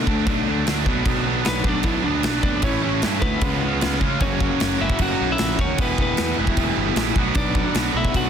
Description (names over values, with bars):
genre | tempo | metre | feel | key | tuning
punk rock | 152 BPM | 4/4 | straight | B minor | A4 = 440 Hz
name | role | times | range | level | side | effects
lightly driven lead guitar | melody | 0.0-8.3 s | A3 to F#5 | -25 LUFS | left 1 dB | none
biting overdriven guitar | riff | 0.0-8.3 s | E2 to D4 | -27 LUFS | left 13 dB | none
tight distorted guitar | riff | 0.0-8.3 s | A2 to G4 | -25 LUFS | right 16 dB | distortion
fuzz picked electric bass | bass | 0.0-8.3 s | E1 to C#3 | -26 LUFS | equal | overdrive
big rock drum kit | drums | 0.1-8.2 s | crash cymbal, kick drum, snare drum | -23 LUFS | equal | none
room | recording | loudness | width
little or no reverb | dense, heavily limited modern master | -18 LUFS | side -8 dB against mid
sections
0.0-4.2 A section; 4.2-8.3 B section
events
none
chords
0.0 D; 0.9 Bm; 2.6 A; 3.4 C#7; 4.2 F#; 5.8 Em; 7.2 Bm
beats
0.27 0.67 | 1.06 1.46 1.85 2.25 | 2.64 3.04 3.43 3.83 | 4.22 4.61 5.01 5.40 | 5.79 6.19 6.58 6.97 | 7.37 7.76 8.15